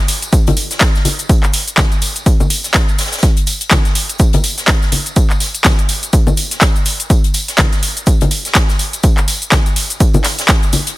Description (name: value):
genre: house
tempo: 124 BPM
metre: 4/4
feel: swing 58% on 16ths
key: none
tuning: none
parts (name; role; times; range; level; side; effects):
- garage drum kit; drums; 0.1-11.0 s; cabasa, handclaps, hi-hat; -16 LUFS; equal; none
- open jazz drum kit; drums; 0.1-11.0 s; hi-hat, shaker, snare drum; -26 LUFS; left 1 dB; none
- tambourine and congas; percussion; 0.1-10.9 s; none; -22 LUFS; left 2 dB; none
- electronic kick drum; drums; 0.3-10.6 s; none; -12 LUFS; equal; overdrive
room: small room ambience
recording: none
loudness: -11 LUFS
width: side -18 dB against mid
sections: 0.0-11.0 A section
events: none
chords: none